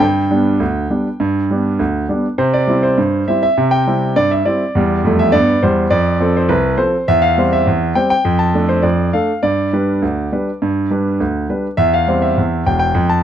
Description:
ragtime piano; 102 BPM; 2/4; straight; C major; A4 = 441 Hz
clear concert grand piano; solo; 0.0-13.2 s; E1 to A5; -13 LUFS; right 1 dB
light reverb; dry, close 1970s-style studio recording; -13 LUFS; side -10 dB against mid
0.0-2.4 A section; 2.4-13.2 B section
0.0 G; 2.4 C; 4.7 Em7; 5.9 F; 7.1 C/E; 8.3 Dm/F; 9.4 G; 11.8 C/E

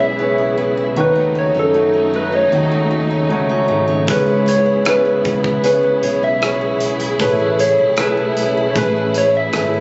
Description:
pop ballad; 77 BPM; 4/4; straight; C# minor; A4 = 440 Hz
soft struck synth lead; melody; 0.0-9.8 s; A4 to E5; -19 LUFS; equal; chorus
warm concert grand piano; accompaniment; 0.0-9.8 s; G#2 to E5; -22 LUFS; equal
warm studio string section; sustained chords; 0.0-9.8 s; C#3 to G#4; -26 LUFS; equal
picked steel-string acoustic guitar; arpeggios; 0.0-9.8 s; C#3 to G#4; -26 LUFS; equal
fretless electric bass; bass; 0.0-9.8 s; G#1 to F#2; -27 LUFS; equal
loose indie drum kit; drums; 4.1-9.7 s; hi-hat, kick drum, rim click; -26 LUFS; equal
light reverb, small room ambience; recorded on a phone in the room, club reverb, nothing above 7.8 kHz; -16 LUFS; mono
0.0-9.8 A section
0.0 C#m7; 1.0 D#m7b5; 4.1 C#m7; 7.2 Amaj7

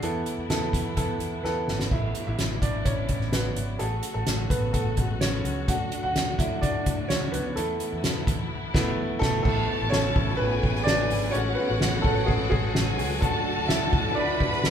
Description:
piano-driven pop; 127 BPM; 4/4; straight; A major; A4 = 440 Hz
clear concert grand piano; accompaniment; 0.0-14.7 s; E3 to F#5; -28 LUFS; right 1 dB
warm studio string section; sustained chords; 0.0-14.7 s; A2 to G#4; -35 LUFS; left 1 dB
vintage muted fingered electric bass; bass; 0.0-14.7 s; E1 to E2; -31 LUFS; equal
soft-mallet drum kit; drums; 0.0-14.7 s; crash cymbal, hi-hat, kick drum, ride cymbal, snare drum; -27 LUFS; equal
warm symphonic violin section; second line; 9.4-14.7 s; F#4 to B5; -30 LUFS; left 1 dB; ping-pong delay
moderate studio reverb, RT60 0.5 s; band playing live in one room; -23 LUFS; side -8 dB against mid
0.0-1.9 A section; 1.9-9.5 B section; 9.5-14.7 C section
drum fill 1.4-1.9; grand piano solo 1.9-9.5, 9.5-14.7; band accent 8.5-9.5
0.0 Esus4; 1.9 Asus2; 3.8 F#madd9/A; 5.7 D; 7.6 Esus4; 9.5 Asus2; 11.3 F#madd9/A; 13.2 D

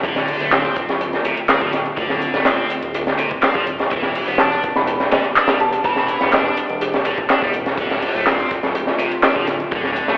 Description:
breakbeat, breaks; 124 BPM; 4/4; straight; A4 = 441 Hz
warbly tape-like pad; sustained chords; 0.0-10.2 s; D3 to G4; -28 LUFS; equal; chorus, built-in reverb, sidechain pumping
high-gain distorted guitar; riff; 0.0-10.2 s; C3 to D4; -22 LUFS; equal; distortion, digital delay
fat analog bass; bass; 0.0-10.2 s; D1 to E1; -26 LUFS; equal
crunchy breakbeat drum kit; drums; 0.0-10.2 s; hi-hat, kick drum, snare drum; -19 LUFS; equal
punchy analog drum machine; drums; 0.0-10.2 s; handclaps, hi-hat; -20 LUFS; equal; overdrive
soft synth bell; melody; 4.4-6.2 s; A5 to B5; -22 LUFS; equal; chorus, AM radio sound, digital delay
moderate plate reverb, RT60 1.6 s, small room ambience; played on a big sound system in a bare room, stone room reverb, vinyl crackle, telephone sound; -16 LUFS; side -24 dB against mid
0.0-10.2 A section
0.0 Dm7; 3.9 Em7; 7.8 Dm7

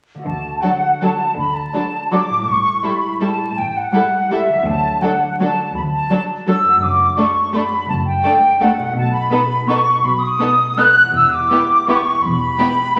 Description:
classical; 165 BPM; 3/4; uneven beats, rubato; D major; A4 = 440 Hz
concert harp; arpeggios; 0.1-13.0 s; E2 to A4; -31 LUFS; equal
flute section; second line; 0.3-13.0 s; E5 to F#6; -18 LUFS; equal
warm symphonic cello section; bass; 0.3-12.5 s; D2 to D3; -29 LUFS; equal
warm symphonic double bass section; bass; 0.3-12.5 s; E1 to D2; -30 LUFS; equal
clear studio violin section; melody; 0.6-13.0 s; G4 to A4; -31 LUFS; equal
warm symphonic violin section; second line; 0.6-13.0 s; D4 to E4; -30 LUFS; equal
rich symphonic viola section; accompaniment; 0.6-13.0 s; F#3 to B3; -24 LUFS; equal
wet recital hall reverb, RT60 1.3 s; vinyl crackle; -16 LUFS; mono
0.3-13.0 A section
0.3 D; 2.5 A7(no3); 4.7 D; 6.8 D/F#; 9.0 B7; 11.1 Em

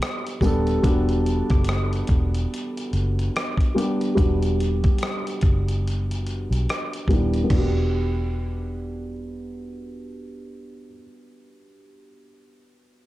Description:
lo-fi hip hop; 72 BPM; 4/4; swing 57% on 16ths; E minor; A4 = 440 Hz
felt-muted upright piano; accompaniment; 0.0-13.1 s; G3 to A4; -26 LUFS; equal; low-pass filter
dusty soul sampler-style drum kit; drums; 0.0-7.7 s; crash cymbal, hi-hat, kick drum, rim click, toms; -24 LUFS; equal
vintage muted fingered electric bass; bass; 0.4-10.9 s; D#1 to B1; -24 LUFS; equal
tambourine; percussion; 0.4-0.6 s; -46 LUFS; right 5 dB
light reverb; dark, warm production; -20 LUFS; side -16 dB against mid
0.0-7.5 A section; 7.5-10.8 B section
filter sweep on felt piano 0.0-7.5
0.0 Em9

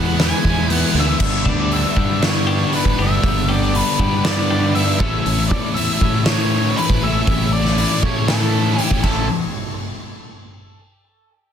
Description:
quiet-loud alternative rock; 119 BPM; 4/4; straight; A mixolydian; A4 = 440 Hz
octave-fuzz lead guitar; melody; 0.0-9.3 s; A4 to G#5; -24 LUFS; left 3 dB; distortion, plate reverb
sludgy distorted guitar; riff; 0.0-9.2 s; G2 to E4; -24 LUFS; right 14 dB; overdrive
thick fuzz guitar; riff; 0.0-9.2 s; G2 to E4; -23 LUFS; left 9 dB; distortion
fuzz fingered electric bass; bass; 0.0-9.3 s; G1 to A2; -21 LUFS; right 1 dB; overdrive
oversized low-tuned drum kit; drums; 0.2-9.2 s; crash cymbal, hi-hat, kick drum, snare drum; -20 LUFS; equal
twangy electric guitar; arpeggios; 1.5-5.3 s; E3 to A4; -28 LUFS; left 4 dB; plate reverb, tape echo
light reverb; dense, heavily limited modern master; -15 LUFS; side -8 dB against mid
0.0-1.2 A section; 1.2-9.3 B section; 9.3-11.3 C section
0.0 E; 1.2 G; 5.0 A; 9.3 N.C.

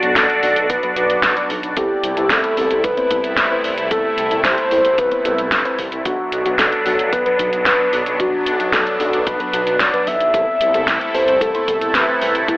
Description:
synthwave; 112 BPM; 4/4; straight; A4 = 441 Hz
soft octave-layered synth lead; melody; 0.0-12.6 s; E4 to E5; -18 LUFS; equal; chorus, phaser, digital delay
phased analog pad; sustained chords; 0.0-12.6 s; C3 to D5; -21 LUFS; equal; phaser, chorus, sidechain pumping
mellow FM electric piano; stabs; 0.0-12.6 s; F#3 to C5; -26 LUFS; left 1 dB; chorus, phaser, digital delay
wide detuned saw bass; bass; 0.0-12.6 s; G1 to C2; -26 LUFS; equal; chorus, tube saturation, sidechain pumping
pop drum kit; drums; 0.0-12.6 s; hi-hat, snare drum; -19 LUFS; equal; studio reverb
electronic kick drum; drums; 0.7-12.6 s; -26 LUFS; equal; studio reverb
moderate scoring stage reverb, RT60 1.7 s; telephone sound; -14 LUFS; side -20 dB against mid
0.0-12.6 A section
0.0 Bm; 1.8 Amadd9/C; 6.1 Bm; 10.3 Amadd9/C

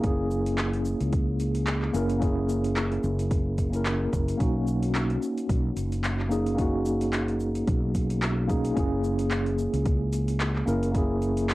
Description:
sunset chillout; 110 BPM; 4/4; swing 56% on 16ths; B major; A4 = 440 Hz
mellow tine electric piano; accompaniment; 0.0-11.5 s; A#3 to A#4; -27 LUFS; equal; medium stereo tremolo, auto-pan, cassette tape, analog delay
mellow fretless electric bass; bass; 0.0-11.5 s; F#1 to C#2; -28 LUFS; equal
deep house drum kit; drums; 0.0-11.5 s; handclaps, hi-hat, shaker; -33 LUFS; equal; overdrive
electronic kick drum; drums; 0.0-11.1 s; -27 LUFS; equal; overdrive
moderate small room reverb, RT60 0.5 s; home recording on cassette; -24 LUFS; side -18 dB against mid
0.0-11.5 A section
0.0 F#7; 4.4 Bmaj7; 8.8 F#7

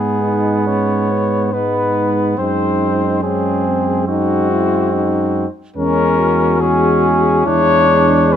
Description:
classical, brass quintet; 71 BPM; 4/4; rubato; A4 = 440 Hz
dark trumpet; melody; 0.0-8.4 s; F#4 to C#5; -18 LUFS; left 7 dB
warm flugelhorn; second line; 0.0-8.4 s; B3 to D4; -20 LUFS; right 5 dB
mellow trombone; accompaniment; 0.0-8.4 s; G#3; -22 LUFS; right 3 dB
warm French horn; accompaniment; 0.0-8.4 s; B3 to F#4; -20 LUFS; left 4 dB
dark tuba; bass; 0.0-8.4 s; E2 to G#2; -20 LUFS; right 4 dB
light reverb; close, detailed microphones; -13 LUFS; side -9 dB against mid
0.0-8.4 A section
0.0 G#m; 2.4 G#7/F#; 5.8 C#m/E; 7.5 E7

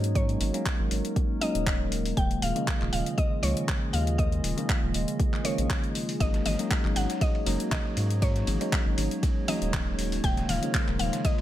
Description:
deep house; 119 BPM; 4/4; swing 54% on 16ths; A4 = 436 Hz
mallet-like synth pluck; melody; 0.0-11.4 s; C#5 to G5; -34 LUFS; left 1 dB; chorus, tape echo
hollow soft pad; sustained chords; 0.0-11.4 s; G#3 to D#5; -38 LUFS; equal; chorus, sidechain pumping
bell-like tine electric piano; stabs; 0.0-11.4 s; C#3 to D#4; -31 LUFS; equal; phaser, sidechain pumping, low-pass filter, dub echo
round analog bass; bass; 0.0-11.1 s; D#1 to G#2; -29 LUFS; equal; tube saturation, sidechain pumping
deep house drum kit; drums; 0.0-11.4 s; handclaps, hi-hat; -33 LUFS; left 1 dB; overdrive
electronic kick drum; drums; 0.2-11.4 s; -27 LUFS; equal; overdrive
dusty soul sampler-style drum kit; drums; 6.2-11.4 s; hi-hat, ride cymbal, snare drum; -43 LUFS; right 2 dB; overdrive, sidechain pumping on cymbals, high-pass filter on cymbals, high-pass filter on snare, sidechain pumping on hats, high-pass filter on hats, high-pass filter on room
congas; percussion; 6.5-10.6 s; -37 LUFS; left 4 dB
little or no reverb; -24 LUFS; side -13 dB against mid
0.0-11.4 A section
0.0 G#9sus4; 2.2 D#9sus4; 6.2 G#9sus4; 10.2 D#9sus4

